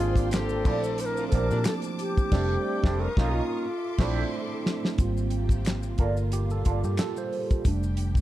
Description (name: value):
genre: R&B, neo-soul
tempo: 90 BPM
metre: 4/4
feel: swing 55% on 16ths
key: unclear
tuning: A4 = 440 Hz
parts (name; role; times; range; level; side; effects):
- mellow bansuri; melody; 0.0-4.3 s; F4 to C5; -30 LUFS; left 1 dB; none
- barky tine electric piano; accompaniment; 0.0-8.2 s; F3 to C5; -31 LUFS; right 4 dB; phaser
- warm symphonic string section; sustained chords; 0.0-8.2 s; Bb2 to D#6; -39 LUFS; left 2 dB; none
- warm horn section; stabs; 0.0-1.6 s; Bb2 to Ab4; -40 LUFS; left 3 dB; none
- vintage muted fingered electric bass; bass; 0.0-8.2 s; F1 to Bb2; -28 LUFS; equal; none
- damped 70s drum kit; drums; 0.2-8.2 s; crash cymbal, handclaps, hi-hat, kick drum, snare drum; -26 LUFS; equal; none
- maracas and finger snaps; percussion; 0.2-8.2 s; none; -45 LUFS; left 6 dB; none
- electric guitar through a small old amp; second line; 0.7-6.8 s; Bb3 to D#5; -35 LUFS; right 5 dB; wah, harmonic tremolo
room: little or no reverb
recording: dark, warm production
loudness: -24 LUFS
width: side -14 dB against mid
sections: 0.0-5.0 A section; 5.0-8.2 B section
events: band accent 2.3-5.0; drum fill 4.3-5.0; tine electric piano solo 5.0-8.2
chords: 0.0 Abmaj13; 0.6 Bbmaj7; 2.3 F69; 3.0 Bmaj9#11; 3.6 Bbmaj9#11; 5.0 Abmaj13; 6.0 Gm9; 7.6 F69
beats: 0.32 0.98 1.65 | 2.31 2.98 3.65 4.32 | 4.98 5.65 6.32 6.98 | 7.65